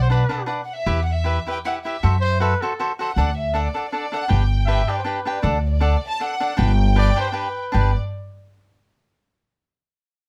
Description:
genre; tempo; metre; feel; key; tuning
mexican folk, mariachi; 157 BPM; 3/4; swing 54% on 8ths; G major; A4 = 441 Hz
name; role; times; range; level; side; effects
clear trumpet; second line; 0.0-7.9 s; A4 to E5; -28 LUFS; equal; none
upright bass; bass; 0.0-7.9 s; G1 to F#2; -21 LUFS; equal; none
cavaquinho; accompaniment; 0.1-7.9 s; D4 to G5; -27 LUFS; equal; none
dark studio violin section; melody; 0.6-7.9 s; D5 to A5; -31 LUFS; equal; none
room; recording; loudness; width
little or no reverb; close, detailed microphones; -21 LUFS; mono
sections
0.0-5.5 A section; 5.5-7.7 B section; 7.7-8.9 C section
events
none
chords
0.0 Bm; 0.9 Em; 2.0 F#m7b5; 3.2 D; 4.3 G; 5.5 D; 6.6 G

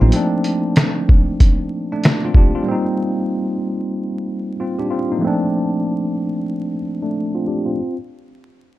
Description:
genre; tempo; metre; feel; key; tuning
hip hop, boom-bap hip-hop; 94 BPM; 4/4; swing 63% on 16ths; unclear; A4 = 440 Hz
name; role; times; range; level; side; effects
bell-like tine electric piano; accompaniment; 0.0-8.0 s; F3 to G4; -19 LUFS; equal; medium stereo tremolo, cassette tape, low-pass filter, plate reverb
trip hop sampler-style drum kit; drums; 0.1-2.5 s; hi-hat, kick drum, snare drum; -13 LUFS; equal; none
room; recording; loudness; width
light reverb; dark, warm production, vinyl crackle; -16 LUFS; side -16 dB against mid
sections
0.0-7.8 A section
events
filter sweep on tine electric piano 0.0-7.8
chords
0.1 F69; 2.7 Ebmaj13/G; 5.2 F69

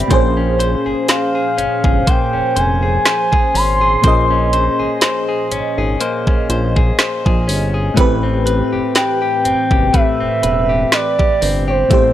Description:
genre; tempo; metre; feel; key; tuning
contemporary R&B; 61 BPM; 4/4; swing 54% on 16ths; Bb dorian; A4 = 440 Hz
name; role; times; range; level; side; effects
FM electric piano with soft pad layer; accompaniment; 0.0-12.1 s; A2 to B5; -20 LUFS; equal; chorus, phaser
direct-recorded clean electric guitar; arpeggios; 0.0-12.1 s; A3 to C5; -21 LUFS; left 3 dB; tape echo
fat analog bass; bass; 0.0-12.1 s; E1 to Bb1; -19 LUFS; equal; none
smooth R&B drum kit; drums; 0.1-12.1 s; hi-hat, kick drum, snare drum; -15 LUFS; equal; none
gliding portamento lead; melody; 1.1-12.1 s; C5 to C6; -17 LUFS; equal; chorus, tape echo
room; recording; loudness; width
little or no reverb; dry, gritty hardware recording; -13 LUFS; side -12 dB against mid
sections
0.0-12.1 A section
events
none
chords
0.1 Bbm9; 8.0 Am9

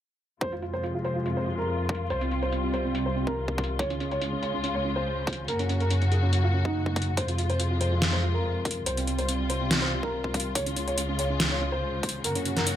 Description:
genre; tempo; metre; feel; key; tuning
heavy wobble dubstep; 142 BPM; 4/4; half-time; F minor; A4 = 440 Hz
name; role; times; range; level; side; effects
dark grand piano; melody; 0.4-12.8 s; C4 to Db5; -31 LUFS; right 1 dB; ping-pong delay
dark symphonic string section; sustained chords; 0.4-12.8 s; C2 to Gb4; -27 LUFS; equal; sidechain pumping, low-pass filter
dubstep drum kit; drums; 0.4-12.8 s; hi-hat, snare drum; -30 LUFS; left 1 dB; overdrive, low-pass filter on hats, low-pass filter on snare, low-pass filter on room
electronic kick drum; drums; 0.4-12.1 s; none; -33 LUFS; equal; high-pass filter on kick
room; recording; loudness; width
light reverb, small room ambience; none; -25 LUFS; side -11 dB against mid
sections
0.4-12.8 A section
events
filter sweep on string section 0.4-12.8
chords
0.4 Fm; 2.1 Csus4; 3.8 Db; 5.5 Gb; 7.2 Fm; 8.9 Csus4; 10.6 Db; 12.2 Gb

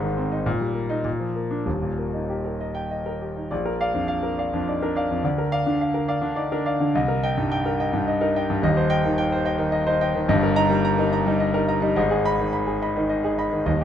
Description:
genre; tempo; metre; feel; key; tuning
classical, virtuoso piano study; 106 BPM; 3/4; rubato; Eb major, Bb major from 3.5 s; A4 = 439 Hz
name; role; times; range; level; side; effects
clear grand piano; solo; 0.0-13.8 s; Eb1 to Cb6; -21 LUFS; equal; none
room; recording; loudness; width
moderate studio reverb, RT60 0.8 s; dark, warm production; -21 LUFS; side -9 dB against mid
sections
0.0-3.5 A section; 3.5-13.8 B section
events
none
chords
0.5 Eb/Bb; 1.1 Bb; 1.7 Eb; 3.5 Bb; 5.2 Bb/D; 6.9 Cm7; 8.6 Cm/Eb; 10.3 Eb/G; 12.0 Abm

